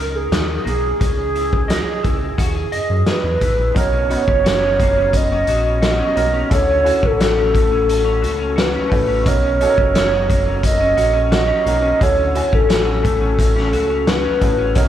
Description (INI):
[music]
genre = indie pop, bedroom pop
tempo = 87 BPM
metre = 4/4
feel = straight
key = unclear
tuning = A4 = 440 Hz
[part]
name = warbly nostalgic lead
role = melody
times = 0.0-14.9 s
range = G#4 to D#5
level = -18 LUFS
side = right 1 dB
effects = tremolo, wide subtle chorus, slapback echo, tape echo
[part]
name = electric guitar through a small old amp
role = accompaniment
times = 0.0-14.9 s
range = B2 to D#5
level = -25 LUFS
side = left 2 dB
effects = analog chorus, vibrato effect, slapback echo
[part]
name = round analog bass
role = bass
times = 0.0-14.9 s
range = F#1 to F#2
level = -21 LUFS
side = equal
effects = none
[part]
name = raw garage drum kit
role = drums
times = 0.3-14.9 s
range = hi-hat, kick drum, snare drum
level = -20 LUFS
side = equal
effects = none
[part]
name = warm upright piano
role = accompaniment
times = 3.7-14.9 s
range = B3 to G#5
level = -25 LUFS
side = right 4 dB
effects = cassette tape, slapback echo
[sound]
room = small room ambience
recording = live gig heard through the venue's PA, club ambience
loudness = -14 LUFS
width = side -11 dB against mid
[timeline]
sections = 0.0-3.8 A section; 3.8-14.9 B section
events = none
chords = 0.0 Bmaj9/C#; 1.0 Emaj7/C#; 3.8 Bmaj9; 6.5 Dmaj7; 9.3 Bmaj9; 12.0 Dmaj7